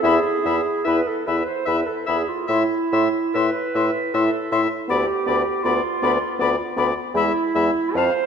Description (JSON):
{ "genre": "classical, slow romantic movement for wind quintet", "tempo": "67-81 BPM", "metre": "3/4", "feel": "rubato", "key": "unclear", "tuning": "A4 = 440 Hz", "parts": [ { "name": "clear oboe", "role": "second line", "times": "0.0-8.1 s", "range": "D5 to F5", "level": "-26 LUFS", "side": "left 5 dB", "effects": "none" }, { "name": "warm French horn", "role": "accompaniment", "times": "0.0-8.1 s", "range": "G#3 to E4", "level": "-25 LUFS", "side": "left 1 dB", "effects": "none" }, { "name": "warm clarinet", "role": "accompaniment", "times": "0.0-8.3 s", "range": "E4 to C5", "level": "-23 LUFS", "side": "right 4 dB", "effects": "none" }, { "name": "clear bassoon", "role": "bass", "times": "0.0-8.1 s", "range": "D2 to A2", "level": "-25 LUFS", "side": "equal", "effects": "none" }, { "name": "silver concert flute", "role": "melody", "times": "0.1-8.1 s", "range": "A5 to C6", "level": "-28 LUFS", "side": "left 10 dB", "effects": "none" } ], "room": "wet concert hall reverb, RT60 2.1 s", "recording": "none", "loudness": "-19 LUFS", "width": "side -7 dB against mid", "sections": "0.0-8.3 A section", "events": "none", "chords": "0.0 E; 2.5 Am; 4.9 Bdim/D; 7.1 E" }